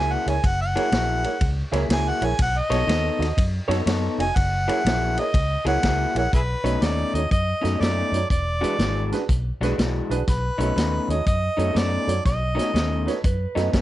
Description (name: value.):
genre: electric blues shuffle.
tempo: 122 BPM.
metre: 4/4.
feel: swing 65% on 8ths.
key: B mixolydian.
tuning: A4 = 440 Hz.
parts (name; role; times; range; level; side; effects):
mellow harmonica; melody; 0.0-13.2 s; E4 to G#5; -25 LUFS; right 1 dB; plate reverb.
electric guitar through a small old amp; riff; 0.0-13.8 s; B2 to C#5; -27 LUFS; left 3 dB; none.
vintage muted fingered electric bass; bass; 0.0-13.8 s; E1 to F#2; -25 LUFS; equal; none.
dark upright piano; accompaniment; 0.3-13.6 s; D4 to D#5; -29 LUFS; right 5 dB; plate reverb.
vintage drum kit; drums; 0.3-13.8 s; hi-hat, kick drum, ride cymbal, snare drum; -25 LUFS; equal; none.
electric slide guitar; second line; 13.1-13.8 s; B4; -32 LUFS; right 6 dB; plate reverb.
room: light reverb.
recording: nothing above 10.9 kHz.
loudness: -20 LUFS.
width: side -14 dB against mid.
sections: 0.0-6.3 A section; 6.3-13.8 B section.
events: harmonica solo 0.0-6.3.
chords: 0.0 F#9; 2.4 B9; 4.4 F#9; 6.3 B9; 8.3 E9; 10.3 B9.